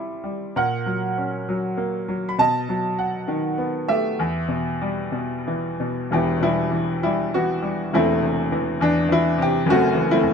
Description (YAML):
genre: classical, lyrical solo piano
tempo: 86-109 BPM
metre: 3/4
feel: rubato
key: E harmonic minor, E minor from 6.1 s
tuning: A4 = 441 Hz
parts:
  - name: bright grand piano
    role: solo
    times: 0.0-10.3 s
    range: E1 to C6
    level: -20 LUFS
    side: equal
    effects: none
room: moderate small room reverb, RT60 0.5 s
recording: minimal, uncompressed stereo recording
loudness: -20 LUFS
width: side -6 dB against mid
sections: 0.0-6.1 A section; 6.1-10.3 B section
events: none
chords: 0.0 C; 0.5 F#/A#; 2.4 B7; 4.2 Em; 7.9 Am/E; 9.7 F#m7b5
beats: | 0.54 1.16 1.77 | 2.38 2.98 3.58 | 4.19 4.81 5.48 | 6.12 6.74 7.35 | 7.93 8.52 9.10 | 9.67 10.23